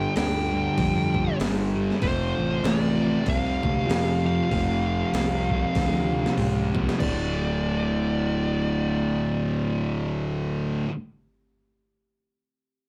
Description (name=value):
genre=stoner and doom metal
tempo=96 BPM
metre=4/4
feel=swing 59% on 8ths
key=D minor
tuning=A4 = 440 Hz
part: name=fuzz lead guitar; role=melody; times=0.0-10.2 s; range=C5 to G5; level=-33 LUFS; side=equal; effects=distortion
part: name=deep rumbling drone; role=sustained chords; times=0.0-10.3 s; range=D3 to A4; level=-38 LUFS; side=equal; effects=none
part: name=fuzz guitar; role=riff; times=0.0-10.9 s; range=D2 to G3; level=-34 LUFS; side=equal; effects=none
part: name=thick fuzz guitar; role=riff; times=0.0-10.9 s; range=D2 to G3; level=-33 LUFS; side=equal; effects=distortion
part: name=thick fuzz guitar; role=riff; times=0.0-10.9 s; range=D2 to G3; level=-33 LUFS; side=equal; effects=distortion
part: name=fuzz fingered electric bass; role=bass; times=0.0-10.8 s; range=D1 to F2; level=-30 LUFS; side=equal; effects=overdrive
part: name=breakbeat sampler-style drum kit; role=drums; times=0.2-7.2 s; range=crash cymbal, hi-hat, kick drum, snare drum, toms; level=-31 LUFS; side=equal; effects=none
room=light reverb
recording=rough rehearsal-room recording, tube saturation, faint mains hum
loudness=-25 LUFS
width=mono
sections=0.0-7.0 A section; 7.0-9.5 B section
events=drum fill 5.8-7.0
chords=0.0 G5; 2.0 F; 7.0 D5